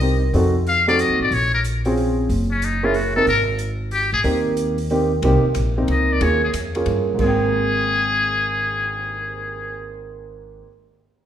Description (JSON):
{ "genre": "jazz, small-group swing and bop", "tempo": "184 BPM", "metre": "3/4", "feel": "swing 64% on 8ths", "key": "Ab major", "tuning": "A4 = 440 Hz", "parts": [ { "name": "warm grand piano", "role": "accompaniment", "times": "0.0-10.7 s", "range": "Ab2 to G5", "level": "-22 LUFS", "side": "right 2 dB", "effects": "none" }, { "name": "upright bass", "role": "bass", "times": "0.0-10.6 s", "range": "Gb1 to G2", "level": "-22 LUFS", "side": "equal", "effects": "none" }, { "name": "open jazz drum kit", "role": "drums", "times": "0.0-9.1 s", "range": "crash cymbal, cymbal swell, hi-hat, kick drum, ride cymbal, snare drum", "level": "-34 LUFS", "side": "equal", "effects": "none" }, { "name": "trumpet with metal mute", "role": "melody", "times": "0.7-9.9 s", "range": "Db4 to F5", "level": "-21 LUFS", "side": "left 3 dB", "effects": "none" } ], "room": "wet recital hall reverb, RT60 1.4 s", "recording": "recorded in a church or concert hall", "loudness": "-17 LUFS", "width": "side -10 dB against mid", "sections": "0.0-5.2 A section; 5.2-7.2 B section; 7.2-9.2 C section", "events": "none", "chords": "0.3 F7b9; 1.3 Bbm9; 2.3 Gb; 3.3 Abmaj9; 5.2 Cm7; 6.2 Eb7sus4; 7.2 Abmaj9", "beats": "0.01 | 0.33 0.66 0.98 | 1.31 1.64 1.96 | 2.29 2.62 2.94 | 3.27 3.60 3.92 | 4.25 4.58 4.90 | 5.23 5.56 5.88 | 6.21 6.54 6.87 | 7.20 7.52 7.85 | 8.18 8.51 8.83" }